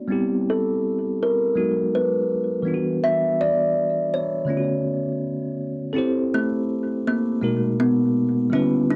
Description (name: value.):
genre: hip hop.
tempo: 82 BPM.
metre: 4/4.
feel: swing 65% on 16ths.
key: A dorian.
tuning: A4 = 439 Hz.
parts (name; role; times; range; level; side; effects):
bell-like tine electric piano; accompaniment; 0.0-9.0 s; B2 to C5; -26 LUFS; equal; low-pass filter, cassette tape.
kalimba; melody; 0.5-9.0 s; A3 to E5; -24 LUFS; equal; low-pass filter, cassette tape.
room: wet booth ambience, RT60 0.2 s.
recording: home recording on cassette.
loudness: -22 LUFS.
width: mono.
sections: 0.0-6.0 A section; 6.0-9.0 B section.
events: filter sweep 0.0-6.0.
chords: 0.1 Am9; 1.6 G#m7; 2.7 Em9; 4.5 Bm9; 6.0 Am7; 7.4 G#m9.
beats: | 0.11 0.84 1.57 2.30 | 3.04 3.77 4.50 5.23 | 5.96 6.69 7.42 8.16 | 8.89.